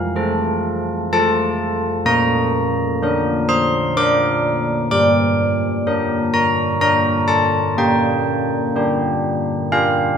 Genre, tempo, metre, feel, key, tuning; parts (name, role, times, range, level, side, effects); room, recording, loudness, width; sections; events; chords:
classical, tune for church bells; 63 BPM; 3/4; straight; A4 = 442 Hz
carillon bells; solo; 0.0-10.2 s; F3 to D6; -15 LUFS; equal
moderate concert hall reverb, RT60 2.2 s; minimal, uncompressed stereo recording; -15 LUFS; side -7 dB against mid
0.0-10.2 A section
0.0 F; 2.1 Bb; 4.9 Gm; 7.8 Gm/Bb